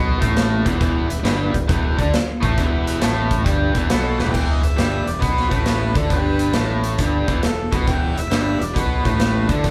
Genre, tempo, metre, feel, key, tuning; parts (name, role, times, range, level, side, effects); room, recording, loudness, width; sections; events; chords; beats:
blues rock power trio and southern rock; 136 BPM; 4/4; swing 66% on 8ths; E minor; A4 = 440 Hz
raw garage guitar; riff; 0.0-9.7 s; E2 to D4; -24 LUFS; equal; overdrive
fuzz fingered electric bass; bass; 0.0-9.7 s; E1 to D2; -26 LUFS; equal; overdrive
big rock drum kit; drums; 0.2-9.7 s; crash cymbal, hi-hat, kick drum, snare drum, toms; -23 LUFS; equal
bright tonewheel organ; sustained chords; 0.7-4.3 s; B3 to B4; -37 LUFS; equal
clear harmonica; melody; 3.9-9.7 s; A4 to G5; -30 LUFS; equal; overdrive
moderate large studio reverb, RT60 1.1 s; band playing live in one room; -19 LUFS; mono
0.0-4.3 A section; 4.3-9.7 B section
drum fill 4.1
0.0 Em
0.36 | 0.80 1.25 1.69 2.13 | 2.57 3.01 3.45 3.89 | 4.34 4.78 5.22 5.66 | 6.10 6.55 6.99 7.43 | 7.87 8.31 8.76 9.20 | 9.64